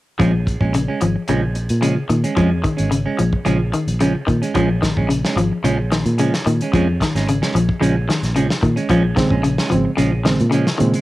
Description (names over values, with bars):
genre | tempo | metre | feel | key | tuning
afrobeat | 110 BPM | 4/4 | straight | Bb minor | A4 = 440 Hz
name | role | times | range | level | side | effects
electric guitar at the edge of break-up | arpeggios | 0.2-11.0 s | Db3 to F3 | -20 LUFS | left 3 dB | cassette tape
clean electric guitar | stabs | 0.2-11.0 s | F3 to Db4 | -22 LUFS | right 4 dB | spring reverb, cassette tape
fingered electric bass | bass | 0.2-10.9 s | Ab1 to Bb2 | -20 LUFS | equal | none
warm soul drum kit | drums | 0.2-11.0 s | hi-hat, kick drum, snare drum | -23 LUFS | equal | cassette tape
reed electric piano | accompaniment | 9.2-11.0 s | Db3 to C4 | -19 LUFS | right 2 dB | fast tremolo, cassette tape
room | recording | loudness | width
little or no reverb | home recording on cassette | -15 LUFS | side -17 dB against mid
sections
0.2-11.0 A section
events
none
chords
0.2 Bbm7